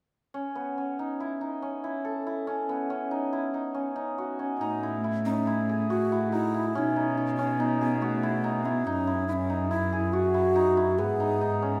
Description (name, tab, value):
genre	contemporary instrumental, chamber music in an uneven meter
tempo	141 BPM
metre	5/4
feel	straight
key	A lydian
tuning	A4 = 440 Hz
part	hammered dulcimer	arpeggios	0.3-11.8 s	B3 to A4	-31 LUFS	equal	none
part	breathy mellow long shakuhachi	melody	4.6-11.8 s	A3 to G#4	-30 LUFS	equal	none
part	warm cello	bass	4.6-11.8 s	F#2 to B2	-33 LUFS	equal	none
room	moderate recital hall reverb, RT60 1.4 s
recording	none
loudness	-28 LUFS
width	mono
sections	0.3-4.6 A section; 4.6-11.8 B section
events	none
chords	0.3 A; 2.5 B; 4.6 Amaj7; 6.8 B7; 8.9 F#5; 11.0 G#m7